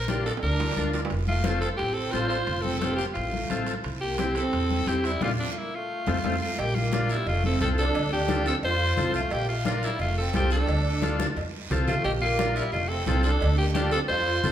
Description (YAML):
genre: latin, cumbia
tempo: 176 BPM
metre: 4/4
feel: straight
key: F major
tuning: A4 = 439 Hz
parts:
  - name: raspy alto saxophone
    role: melody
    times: 0.0-14.5 s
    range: D4 to C5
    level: -28 LUFS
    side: equal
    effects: none
  - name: upright bass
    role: bass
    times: 0.0-14.5 s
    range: F1 to F2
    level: -28 LUFS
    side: equal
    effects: none
  - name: combo organ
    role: accompaniment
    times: 0.1-14.5 s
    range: A3 to Bb4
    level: -32 LUFS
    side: left 2 dB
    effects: none
  - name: congas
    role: percussion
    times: 0.1-14.5 s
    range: none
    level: -34 LUFS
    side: left 4 dB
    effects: none
  - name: guiro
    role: percussion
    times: 0.1-14.5 s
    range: none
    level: -40 LUFS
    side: right 6 dB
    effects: none
  - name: timbales and cowbell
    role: percussion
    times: 0.1-14.5 s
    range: none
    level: -38 LUFS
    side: right 3 dB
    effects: none
  - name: musette accordion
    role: second line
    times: 0.4-14.5 s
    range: F3 to F4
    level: -32 LUFS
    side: right 3 dB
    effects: none
room: wet large studio reverb, RT60 1.4 s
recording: band playing live in one room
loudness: -23 LUFS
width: side -10 dB against mid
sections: 0.0-6.6 A section; 6.6-14.5 B section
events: drum fill 0.3-1.1, 6.1-6.6, 11.2-12.1; band accent 5.2-6.6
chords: 0.0 Bb; 1.1 F; 3.9 C6; 5.2 Bb; 5.9 F; 6.6 Bb; 7.3 F; 8.0 Dm; 8.6 F; 9.3 Bb; 10.0 F; 10.7 Dm; 11.4 F; 12.1 Bb; 12.7 F; 13.4 Dm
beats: 0.09 0.43 0.77 | 1.11 1.46 1.80 2.14 | 2.48 2.82 3.17 3.51 | 3.85 4.19 4.54 4.88 | 5.22 5.56 5.90 6.24 | 6.59 6.93 7.27 7.61 | 7.95 8.29 8.64 8.98 | 9.32 9.66 10.00 10.34 | 10.69 11.03 11.37 11.71 | 12.05 12.39 12.73 13.07 | 13.42 13.76 14.10 14.44